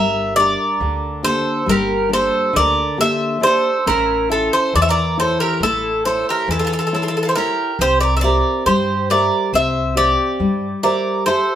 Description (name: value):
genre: greek folk, Greek bouzouki band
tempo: 138 BPM (eighths)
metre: 9/8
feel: straight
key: unclear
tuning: A4 = 439 Hz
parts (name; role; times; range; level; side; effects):
- Greek bouzouki; melody; 0.0-11.6 s; A4 to E5; -17 LUFS; equal; none
- bowl-back mandolin; second line; 0.0-11.6 s; E4 to C#5; -24 LUFS; right 5 dB; none
- nylon-string guitar; accompaniment; 0.0-11.6 s; D3 to E5; -22 LUFS; left 2 dB; none
- upright bass; bass; 0.0-10.7 s; G1 to G2; -24 LUFS; equal; none
room: wet studio reverb, RT60 0.7 s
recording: band playing live in one room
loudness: -15 LUFS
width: side -10 dB against mid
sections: 0.0-11.6 A section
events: none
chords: 0.0 Gm; 3.9 A; 7.8 C